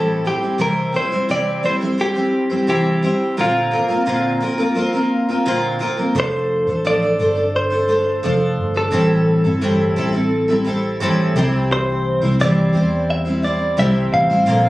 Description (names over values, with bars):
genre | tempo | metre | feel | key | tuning
acoustic pop | 86 BPM | 4/4 | straight | unclear | A4 = 440 Hz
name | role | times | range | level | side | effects
direct-recorded clean electric guitar | melody | 0.0-14.7 s | F4 to F5 | -20 LUFS | equal | none
picked steel-string acoustic guitar | accompaniment | 0.0-14.7 s | A2 to C5 | -18 LUFS | equal | double-tracked left and right
vintage muted fingered electric bass | bass | 6.1-14.7 s | F1 to E2 | -22 LUFS | equal | none
room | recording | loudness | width
moderate studio reverb, RT60 0.6 s | recorded on a phone in the room, club reverb, compression | -15 LUFS | side -17 dB against mid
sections
0.0-6.2 A section; 6.2-14.7 B section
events
none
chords
0.3 C; 3.4 Bbadd9; 6.2 F6; 8.9 Am7; 11.4 C